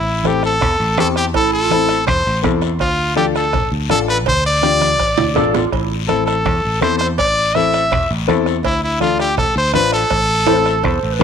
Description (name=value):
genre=latin, cumbia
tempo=164 BPM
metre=4/4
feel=straight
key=A minor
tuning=A4 = 440 Hz
part: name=brilliant trumpet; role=melody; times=0.0-11.2 s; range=E4 to E5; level=-17 LUFS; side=equal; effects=none
part: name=fingered electric bass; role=bass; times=0.0-11.2 s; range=A1 to E2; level=-21 LUFS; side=equal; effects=none
part: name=clear upright piano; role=accompaniment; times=0.2-11.2 s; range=C4 to C5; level=-20 LUFS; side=left 13 dB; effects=none
part: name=congas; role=percussion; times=0.2-11.2 s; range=none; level=-26 LUFS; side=right 9 dB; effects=none
part: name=guiro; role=percussion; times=0.2-11.2 s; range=none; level=-31 LUFS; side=left 15 dB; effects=none
part: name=bombo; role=percussion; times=0.3-11.2 s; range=none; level=-25 LUFS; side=right 1 dB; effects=none
part: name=cowbell and timbales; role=percussion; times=0.6-11.2 s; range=none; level=-24 LUFS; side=right 12 dB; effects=none
part: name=dark clarinet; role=second line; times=1.4-2.0, 5.3-6.0, 10.5-11.2 s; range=E4 to C5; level=-22 LUFS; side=right 10 dB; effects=none
room=light reverb, small room ambience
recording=1960s-style stereo with parts hard left and right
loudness=-13 LUFS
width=side -7 dB against mid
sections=0.0-11.2 A section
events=drum fill 4.6-5.7, 10.5-11.2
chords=0.0 Am; 2.8 Dm; 5.7 Am; 8.6 Dm; 10.1 Am